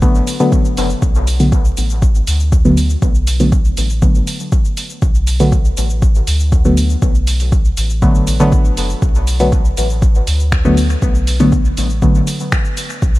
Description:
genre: dub techno.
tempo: 120 BPM.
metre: 4/4.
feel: straight.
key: B minor.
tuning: A4 = 441 Hz.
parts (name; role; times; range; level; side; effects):
deep mellow chord stab; stabs; 0.0-13.2 s; D3 to B3; -17 LUFS; equal; chorus, phaser, sidechain pumping, dub echo.
soft dub sub bass; bass; 0.0-13.2 s; F#1 to D2; -16 LUFS; equal; sidechain pumping.
electronic kick drum; drums; 0.0-13.1 s; none; -14 LUFS; equal; overdrive.
punchy analog drum machine; drums; 0.0-13.2 s; cabasa, finger snaps, hi-hat; -24 LUFS; right 1 dB; none.
room: digital ambience.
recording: vinyl crackle.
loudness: -11 LUFS.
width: side -18 dB against mid.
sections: 0.0-1.0 A section; 1.0-13.2 A section.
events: none.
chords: 0.0 Bm7.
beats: 0.02 0.52 | 1.02 1.52 2.02 2.52 | 3.02 3.52 4.02 4.52 | 5.02 5.52 6.02 6.52 | 7.02 7.52 8.02 8.52 | 9.02 9.52 10.02 10.52 | 11.02 11.52 12.02 12.52 | 13.02.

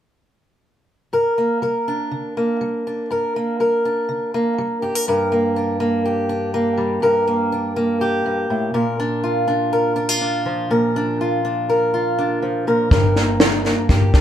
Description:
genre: indie folk with a building arrangement.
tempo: 122 BPM.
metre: 4/4.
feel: straight.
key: G minor.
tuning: A4 = 440 Hz.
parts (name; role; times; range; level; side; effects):
fingerpicked acoustic archtop guitar; accompaniment; 1.1-14.2 s; G2 to Bb4; -18 LUFS; equal; none.
upright bass; bass; 12.9-14.2 s; G1 to D2; -19 LUFS; equal; none.
compact cocktail drum kit; drums; 12.9-14.2 s; kick drum, snare drum; -16 LUFS; equal; none.
room: moderate studio reverb, RT60 0.6 s.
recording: band playing live in one room.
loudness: -17 LUFS.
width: side -10 dB against mid.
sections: 1.1-5.1 A section; 5.1-14.2 B section.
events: none.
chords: 1.1 Gm; 8.7 Bb; 12.9 Gm.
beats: | 1.12 1.62 2.11 2.60 | 3.10 3.59 4.08 4.57 | 5.06 5.55 6.04 6.54 | 7.03 7.52 8.01 8.50 | 8.99 9.48 9.97 10.46 | 10.95 11.44 11.93 12.42 | 12.91 13.40 13.90.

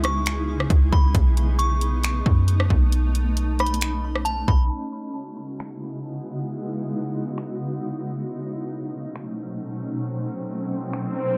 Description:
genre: hip hop, atmospheric cloud-rap.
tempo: 135 BPM.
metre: 4/4.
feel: half-time.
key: C# minor.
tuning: A4 = 439 Hz.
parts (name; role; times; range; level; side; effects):
delicate synth tine bell; melody; 0.0-4.7 s; A5 to C#6; -32 LUFS; equal; chorus, tape echo.
granular cloud pad; sustained chords; 0.0-11.4 s; B2 to G#4; -31 LUFS; equal; built-in reverb, sidechain pumping.
clean 808-style bass; bass; 0.0-4.7 s; B1 to F#2; -23 LUFS; equal; none.
trap drum kit; drums; 0.0-11.0 s; finger snaps, hi-hat, kick drum, rim click; -24 LUFS; equal; overdrive.
swell; sound effects; 10.1-11.4 s; none; -33 LUFS; equal; none.
room: little or no reverb.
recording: echo-heavy mix, low-pass filter.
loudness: -24 LUFS.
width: mono.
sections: 0.0-4.7 A section; 4.7-11.4 B section.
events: filter sweep 4.7-11.4; swell 10.1-11.4; kick muted 10.9-11.4.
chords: 0.0 C#m9; 1.1 B9; 4.7 C#m11; 8.3 B9.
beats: 0.26 0.70 | 1.15 1.59 2.04 2.48 | 2.92 3.37 3.81 4.26 | 4.70 5.15 5.59 6.04 | 6.48 6.92 7.37 7.81 | 8.26 8.70 9.15 9.59 | 10.04 10.48 10.93 11.37.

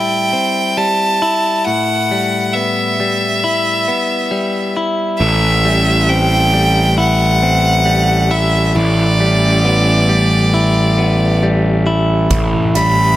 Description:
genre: post-rock.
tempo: 68 BPM.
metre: 4/4.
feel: straight.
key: A dorian.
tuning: A4 = 440 Hz.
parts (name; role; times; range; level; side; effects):
bright violin; melody; 0.0-13.2 s; D5 to B5; -16 LUFS; right 1 dB; analog delay.
direct-recorded clean electric guitar; arpeggios; 0.0-13.2 s; A2 to E4; -18 LUFS; left 2 dB; analog delay.
fuzz picked electric bass; bass; 5.2-13.2 s; A1; -14 LUFS; right 1 dB; overdrive.
soft-mallet drum kit; drums; 12.3-13.0 s; hi-hat, kick drum; -19 LUFS; right 1 dB; none.
felt-muted upright piano; arpeggios; 12.7-13.2 s; E5; -27 LUFS; right 5 dB; analog delay.
room: light reverb, studio reverb.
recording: none.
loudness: -12 LUFS.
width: side -14 dB against mid.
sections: 0.0-5.2 A section; 5.2-13.2 A section.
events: none.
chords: 0.0 Am7; 1.7 G6/A; 5.2 Am7; 8.8 G6/A; 12.3 A7(no3).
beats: 0.76 | 1.65 2.54 3.43 4.32 | 5.21 6.09 6.98 7.87 | 8.76 9.65 10.53 11.42 | 12.31.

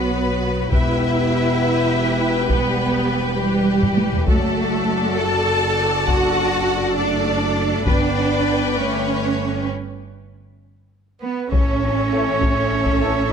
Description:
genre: cinematic, epic orchestral film score.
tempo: 67 BPM (dotted quarters).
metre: 6/8.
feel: straight.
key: unclear.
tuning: A4 = 440 Hz.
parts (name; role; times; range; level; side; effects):
warm symphonic violin section; melody; 0.0-13.3 s; G4 to A5; -27 LUFS; left 3 dB; none.
rich symphonic violin section; second line; 0.0-13.3 s; B4 to B5; -28 LUFS; left 3 dB; none.
rich symphonic viola section; accompaniment; 0.0-13.3 s; F#4 to B4; -27 LUFS; equal; none.
dark French horn section; sustained chords; 0.0-13.1 s; E3 to E5; -26 LUFS; left 4 dB; none.
clear studio double bass section; bass; 0.0-13.3 s; E1 to B1; -25 LUFS; right 3 dB; none.
warm symphonic cello section; bass; 0.0-13.3 s; G3 to A4; -22 LUFS; right 2 dB; none.
taiko ensemble; drums; 0.7-8.4, 11.5-13.3 s; none; -21 LUFS; left 1 dB; none.
warm trumpet; stabs; 11.2-13.3 s; B4 to C#5; -24 LUFS; right 3 dB; none.
clear trombone section; sustained chords; 12.1-13.1 s; E3 to A3; -29 LUFS; right 6 dB; none.
room: light reverb.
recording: close, detailed microphones.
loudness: -17 LUFS.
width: side -7 dB against mid.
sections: 0.0-11.5 A section; 11.5-13.3 B section.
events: drum fill 3.8-4.3, 11.1-11.5; break 9.7-11.5.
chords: 0.0 B5; 0.7 Em; 4.3 D/F#; 7.9 G; 9.7 N.C.; 11.5 A.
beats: | 0.72 1.61 | 2.50 3.39 | 4.28 5.18 | 6.07 6.96 | 7.86 8.76 | 9.68 10.60 | 11.51 12.41 | 13.31.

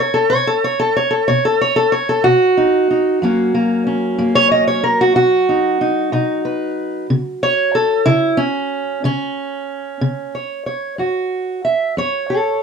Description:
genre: acoustic country blues, solo or duo.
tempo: 62 BPM (dotted quarters).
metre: 12/8.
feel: straight.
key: F# major.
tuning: A4 = 440 Hz.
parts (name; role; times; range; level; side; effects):
fingerpicked steel-string acoustic guitar; solo; 0.0-12.6 s; F#2 to E5; -14 LUFS; equal; none.
room: light reverb.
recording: dark, warm production.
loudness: -14 LUFS.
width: side -6 dB against mid.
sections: 0.0-11.0 A section; 11.0-12.6 B section.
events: steel-string acoustic guitar solo 0.0-11.0.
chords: 0.0 B; 3.2 F#; 5.2 B; 7.1 C#sus4; 11.0 F#5.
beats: 0.31 1.28 2.25 | 3.21 4.18 5.15 6.12 | 7.09 8.06 9.04 10.01 | 10.98 11.96.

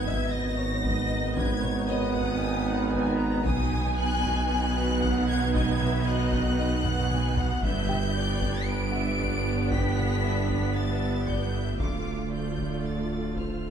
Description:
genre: cinematic, hybrid orchestral and electronic film score.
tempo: 115 BPM.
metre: 4/4.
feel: straight.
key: unclear.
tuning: A4 = 440 Hz.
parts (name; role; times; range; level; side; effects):
rich symphonic violin section; melody; 0.0-13.7 s; D6 to D7; -35 LUFS; left 2 dB; none.
dark symphonic violin section; second line; 0.0-13.7 s; B4 to A#5; -35 LUFS; left 3 dB; none.
rich studio viola section; accompaniment; 0.0-13.7 s; A3 to F4; -34 LUFS; right 2 dB; none.
clear trombone section; sustained chords; 0.0-13.7 s; D3 to B3; -34 LUFS; right 3 dB; none.
warm French horn section; sustained chords; 0.0-13.7 s; B3 to B4; -37 LUFS; left 3 dB; none.
mellow tuba; bass; 0.0-13.7 s; G1 to D2; -33 LUFS; right 3 dB; none.
punchy sub bass; bass; 0.0-13.7 s; D1 to B1; -34 LUFS; left 1 dB; none.
rich symphonic cello section; bass; 0.0-13.7 s; D2 to B2; -35 LUFS; right 4 dB; none.
rich symphonic double bass section; bass; 0.0-13.7 s; G1 to D2; -33 LUFS; right 4 dB; none.
impact; sound effects; 0.0-1.4 s; none; -44 LUFS; left 1 dB; none.
taiko ensemble; drums; 0.1-13.7 s; none; -34 LUFS; left 1 dB; none.
felt-muted upright piano; texture; 0.1-13.7 s; G4 to C#7; -41 LUFS; left 3 dB; none.
room: wet scoring stage reverb, RT60 1.5 s.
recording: none.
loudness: -24 LUFS.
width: side -8 dB against mid.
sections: 0.0-13.7 A section.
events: impact 0.0-1.4; drum fill 6.8-7.6.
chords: 0.0 G#m; 3.5 B; 7.6 G; 11.8 Dm.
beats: 0.32 0.84 | 1.36 1.88 2.41 2.93 | 3.45 3.97 4.49 5.01 | 5.54 6.06 6.58 7.10 | 7.62 8.14 8.67 9.19 | 9.71 10.23 10.75 11.28 | 11.80 12.32 12.84 13.36.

